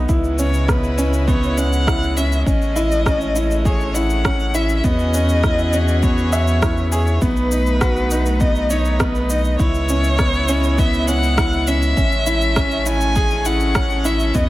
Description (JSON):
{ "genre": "piano and strings electronica", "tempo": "101 BPM", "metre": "4/4", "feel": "straight", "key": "unclear", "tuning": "A4 = 440 Hz", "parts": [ { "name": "warm chamber string section", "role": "sustained chords", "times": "0.0-14.5 s", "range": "C#3 to D#5", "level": "-26 LUFS", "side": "equal", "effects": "sidechain pumping" }, { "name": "warm grand piano", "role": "riff", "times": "0.0-14.5 s", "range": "B3 to E5", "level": "-22 LUFS", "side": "equal", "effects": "none" }, { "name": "round analog bass", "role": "bass", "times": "0.0-14.5 s", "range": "A1 to E2", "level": "-20 LUFS", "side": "equal", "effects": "sidechain pumping" }, { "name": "electronic kick drum", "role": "drums", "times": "0.1-14.5 s", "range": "none", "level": "-20 LUFS", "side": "equal", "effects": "studio reverb" }, { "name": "electronic shaker and rim click", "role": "drums", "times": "0.1-14.5 s", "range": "none", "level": "-26 LUFS", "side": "right 1 dB", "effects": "studio reverb" }, { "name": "dark violin", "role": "melody", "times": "0.4-14.5 s", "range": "B4 to G#5", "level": "-23 LUFS", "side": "left 1 dB", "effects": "none" } ], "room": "studio ambience", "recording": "none", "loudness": "-15 LUFS", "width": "side -16 dB against mid", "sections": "0.0-14.5 A section", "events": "none", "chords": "0.1 C#m7; 2.5 Amaj7; 4.8 E6; 7.2 B7; 9.6 C#m7; 12.0 Amaj7" }